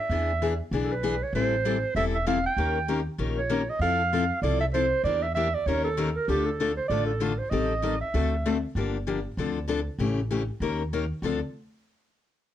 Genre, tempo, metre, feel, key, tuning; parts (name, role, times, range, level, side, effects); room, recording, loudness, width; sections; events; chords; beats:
acoustic string swing (jazz manouche); 194 BPM; 4/4; swing 61% on 8ths; D minor; A4 = 441 Hz
mellow clarinet; melody; 0.0-8.6 s; G4 to G5; -27 LUFS; right 4 dB; slapback echo
picked steel-string acoustic guitar; accompaniment; 0.1-11.4 s; C#3 to Bb4; -28 LUFS; left 5 dB
upright bass; bass; 0.1-11.4 s; E1 to F2; -30 LUFS; equal
light reverb; worn, warbling old tape, cassette tape, warbly pitch drift; -24 LUFS; side -11 dB against mid
0.0-8.8 A section; 8.8-11.2 B section; 11.2-12.5 C section
0.1 E7; 1.3 Am7; 2.6 Eb7; 3.8 Fmaj7; 5.0 Em7b5; 5.7 Eb7#11; 6.3 Dm; 7.5 Am7b5; 8.1 D7; 8.8 Gm7; 9.4 Dm7; 10.0 A7; 10.6 Eb7; 11.2 Dm7
| 0.10 0.41 0.72 1.03 | 1.34 1.65 1.96 2.26 | 2.57 2.88 3.19 3.50 | 3.81 4.12 4.43 4.74 | 5.05 5.36 5.67 5.97 | 6.28 6.59 6.90 7.21 | 7.52 7.83 8.14 8.45 | 8.76 9.06 9.38 9.68 | 9.99 10.30 10.61 10.92 | 11.23